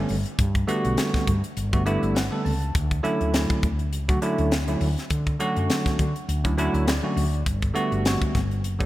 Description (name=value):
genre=electric jazz fusion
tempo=102 BPM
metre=4/4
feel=swing 55% on 16ths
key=D major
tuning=A4 = 441 Hz
part: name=bell-like tine electric piano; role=accompaniment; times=0.0-8.9 s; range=D3 to A5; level=-25 LUFS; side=right 1 dB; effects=analog chorus
part: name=woody fretless electric bass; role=bass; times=0.0-8.9 s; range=F#1 to D3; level=-25 LUFS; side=equal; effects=none
part: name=crisp fusion drum kit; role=drums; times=0.1-8.9 s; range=hi-hat, kick drum, snare drum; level=-26 LUFS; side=equal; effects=gated reverb
room=light reverb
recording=bright 1980s-style digital production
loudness=-21 LUFS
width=side -16 dB against mid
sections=0.0-8.9 A section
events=tine electric piano fill 1.6-2.7, 6.3-7.5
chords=0.0 Gmaj9; 2.7 Dmaj9; 7.5 Gmaj9